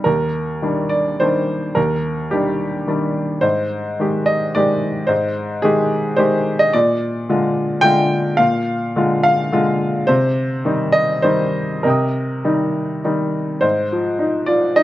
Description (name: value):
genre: neoclassical minimalist piano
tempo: 99-112 BPM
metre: 3/4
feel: rubato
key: Eb major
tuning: A4 = 441 Hz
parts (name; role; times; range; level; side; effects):
- clear upright piano; solo; 0.0-14.8 s; Eb2 to Eb6; -16 LUFS; equal; slapback echo
room: light reverb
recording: recorded outdoors, with no room sound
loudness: -16 LUFS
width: side -14 dB against mid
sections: 0.1-13.6 A section; 13.6-14.8 B section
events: none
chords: 0.1 Ebmaj7; 3.4 Abmaj7; 6.7 Bb7; 10.1 Cm7; 13.6 Ab6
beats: | 0.06 0.64 1.20 | 1.77 2.33 2.89 | 3.44 4.00 4.56 | 5.11 5.65 6.19 | 6.75 7.29 7.85 | 8.41 8.97 9.53 | 10.10 10.66 11.25 | 11.84 12.45 13.04 | 13.64 14.21 14.78